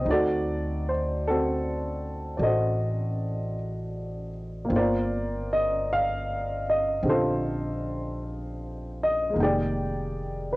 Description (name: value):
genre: jazz ballad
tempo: 52 BPM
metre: 4/4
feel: swing 67% on 8ths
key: unclear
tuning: A4 = 440 Hz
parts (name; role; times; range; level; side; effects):
- dark baby grand piano; accompaniment; 0.0-10.6 s; D3 to G5; -26 LUFS; equal; cassette tape
- upright bass; bass; 0.0-10.6 s; F1 to D2; -31 LUFS; equal; tube saturation
room: moderate booth ambience, RT60 0.2 s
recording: home recording on cassette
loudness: -25 LUFS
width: side -20 dB against mid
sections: 0.0-10.6 A section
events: none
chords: 0.1 D7b9; 4.7 Gm11; 9.4 Fm11